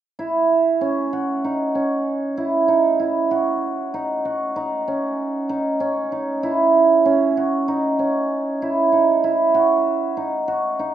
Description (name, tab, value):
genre	contemporary instrumental, contemporary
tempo	96 BPM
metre	5/4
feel	straight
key	unclear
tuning	A4 = 440 Hz
part	cimbalom	arpeggios	0.2-10.9 s	C#4 to F#4	-18 LUFS	right 2 dB	none
room	moderate recital hall reverb, RT60 1.4 s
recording	minimal, uncompressed stereo recording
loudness	-18 LUFS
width	side -11 dB against mid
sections	0.2-10.9 A section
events	none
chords	0.2 F#5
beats	| 0.19 0.81 1.44 2.07 2.69 | 3.32 3.94 4.57 5.19 5.81 | 6.44 7.06 7.68 8.30 8.93 | 9.55 10.17 10.79